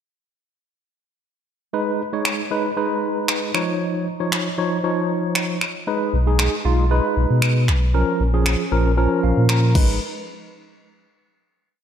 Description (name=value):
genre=dance-pop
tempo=116 BPM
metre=4/4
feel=straight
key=G# dorian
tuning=A4 = 440 Hz
part: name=tine electric piano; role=accompaniment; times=1.7-10.0 s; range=E#3 to A#5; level=-21 LUFS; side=equal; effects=medium stereo tremolo, sidechain pumping
part: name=pop drum kit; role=drums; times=2.3-9.9 s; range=crash cymbal, finger snaps, kick drum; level=-23 LUFS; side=equal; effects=overdrive
part: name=sub bass with octave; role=bass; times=6.1-10.0 s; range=G#1 to B2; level=-18 LUFS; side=equal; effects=sidechain pumping
room=moderate lush hall reverb, RT60 1.6 s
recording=dreamy mix soaked in reverb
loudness=-18 LUFS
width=side -9 dB against mid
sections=1.7-10.0 verse; 10.0-11.8 final hit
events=kick muted 7.9-10.0; tine electric piano fill 9.0-10.0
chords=1.7 G#m; 3.5 C#add9; 5.9 G#m/B; 7.9 A#m; 9.8 G#m; 10.0 N.C.